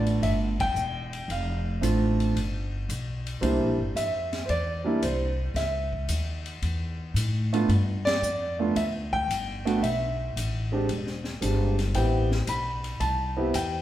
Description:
jazz piano trio; 113 BPM; 4/4; swing 69% on 8ths; G mixolydian; A4 = 437 Hz
warm concert grand piano; melody; 0.0-13.8 s; G3 to B5; -27 LUFS; right 2 dB
upright bass; bass; 0.0-13.8 s; E1 to A2; -28 LUFS; left 1 dB
open jazz drum kit; drums; 0.1-13.7 s; hi-hat, kick drum, ride cymbal, snare drum; -36 LUFS; left 3 dB
wet large studio reverb, RT60 1.4 s; heard from further back in the room; -24 LUFS; side -13 dB against mid
0.0-13.8 A section
band accent 0.5, 8.0
0.0 G7; 1.3 Dm7; 2.4 G7; 3.4 C7; 5.6 C#m(b13); 7.7 G7(no3); 9.8 B7(no3); 10.9 E7alt; 11.9 Am7
0.22 0.75 | 1.29 1.82 2.36 2.89 | 3.42 3.96 4.49 5.02 | 5.56 6.09 6.62 7.15 | 7.69 8.22 8.75 9.28 | 9.81 10.35 10.88 11.41 | 11.94 12.48 13.01 13.54

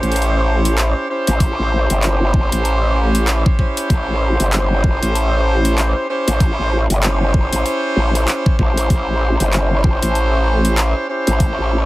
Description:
glitch hop; 96 BPM; 4/4; swing 59% on 16ths; A4 = 441 Hz
bright horn section; stabs; 0.0-11.9 s; C#4 to B#4; -20 LUFS; right 1 dB; sidechain pumping, tape echo
growl bass; bass; 0.0-11.9 s; G1 to A1; -16 LUFS; equal; chorus, overdrive
dubstep drum kit; drums; 0.0-11.6 s; handclaps, hi-hat; -21 LUFS; equal; overdrive
electronic kick drum; drums; 1.4-11.6 s; -15 LUFS; equal; overdrive
little or no reverb; heavily compressed radio sound; -14 LUFS; side -18 dB against mid
0.0-11.9 A section
0.0 A7#9
0.15 0.78 | 1.41 2.03 2.65 3.28 | 3.90 4.53 5.16 5.78 | 6.41 7.03 7.66 8.28 | 8.90 9.53 10.15 10.78 | 11.40

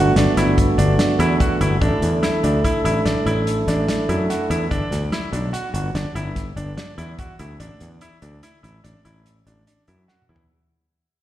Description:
progressive instrumental, band music in an uneven meter; 145 BPM; 7/4; straight; A4 = 440 Hz
tonewheel organ; accompaniment; 0.0-4.7 s; A3 to A4; -21 LUFS; right 2 dB; stopped rotary speaker, slapback echo
bright baby grand piano; arpeggios; 0.0-10.4 s; D4 to F#4; -25 LUFS; equal; plate reverb, slapback echo
overdriven fingered electric bass; bass; 0.0-10.5 s; G1 to F#2; -21 LUFS; equal
warm soul drum kit; drums; 0.2-10.5 s; hi-hat, kick drum, snare drum, toms; -24 LUFS; equal
light reverb; live gig heard through the venue's PA, recital hall reverb; -17 LUFS; side -13 dB against mid
0.0-10.5 A section
fade-out 0.0-10.5; drum fill 10.1-10.5
0.0 Gmaj7; 1.8 Asus4; 4.7 Gmaj7(no3); 7.6 Asus4
0.16 0.58 0.99 1.40 | 1.82 2.23 2.64 3.06 3.47 3.88 4.29 | 4.71 5.12 5.54 5.95 6.36 6.77 7.19 | 7.60 8.01 8.43 8.84 9.25 9.67 10.08

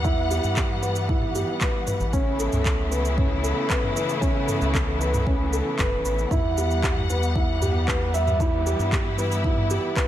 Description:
piano and strings electronica; 115 BPM; 4/4; straight; E dorian; A4 = 438 Hz
rich symphonic string section; sustained chords; 0.0-10.1 s; C#3 to F#5; -28 LUFS; left 2 dB; sidechain pumping
felt-muted upright piano; riff; 0.0-10.1 s; C#4 to E5; -26 LUFS; right 1 dB; ping-pong delay
round analog bass; bass; 0.0-9.8 s; E1 to G2; -26 LUFS; equal; sidechain pumping
electronic kick drum; drums; 0.0-10.1 s; -25 LUFS; equal
organic electronic drum kit; drums; 0.0-10.1 s; handclaps, shaker, toms; -30 LUFS; equal
light reverb, digital ambience; -21 LUFS; side -12 dB against mid
0.0-10.1 A section
0.0 Emadd9; 2.1 Aadd9; 6.3 Emadd9
| 0.05 0.57 1.09 1.62 | 2.14 2.66 3.18 3.70 | 4.22 4.75 5.27 5.79 | 6.31 6.83 7.36 7.88 | 8.40 8.92 9.44 9.96

